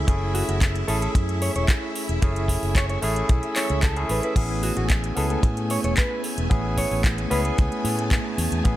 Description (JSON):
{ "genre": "nu-disco, nu disco", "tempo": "112 BPM", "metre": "4/4", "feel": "straight", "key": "A major", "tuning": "A4 = 439 Hz", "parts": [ { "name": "barky tine electric piano", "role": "accompaniment", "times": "0.0-8.8 s", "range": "A3 to G#4", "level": "-28 LUFS", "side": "equal", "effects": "sidechain pumping" }, { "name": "string machine, full ensemble", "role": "sustained chords", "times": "0.0-8.8 s", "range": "A3 to G#5", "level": "-31 LUFS", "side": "equal", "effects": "ensemble chorus, sidechain pumping" }, { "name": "fingered electric bass with an envelope filter", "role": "bass", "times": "0.0-8.8 s", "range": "E1 to A2", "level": "-26 LUFS", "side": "equal", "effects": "none" }, { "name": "house drum kit", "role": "drums", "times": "0.1-8.8 s", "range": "crash cymbal, handclaps, hi-hat", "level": "-29 LUFS", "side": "equal", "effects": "overdrive" }, { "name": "kick drum", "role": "drums", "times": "0.1-8.8 s", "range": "none", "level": "-20 LUFS", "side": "equal", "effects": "none" }, { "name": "mellow electric guitar", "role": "melody", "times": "0.3-7.5 s", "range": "F#4 to C#5", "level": "-31 LUFS", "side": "equal", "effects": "lush chorus, tape echo" } ], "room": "little or no reverb", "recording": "none", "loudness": "-20 LUFS", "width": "side -14 dB against mid", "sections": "0.0-8.8 A section", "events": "none", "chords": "0.0 F#m9; 4.4 Amaj9" }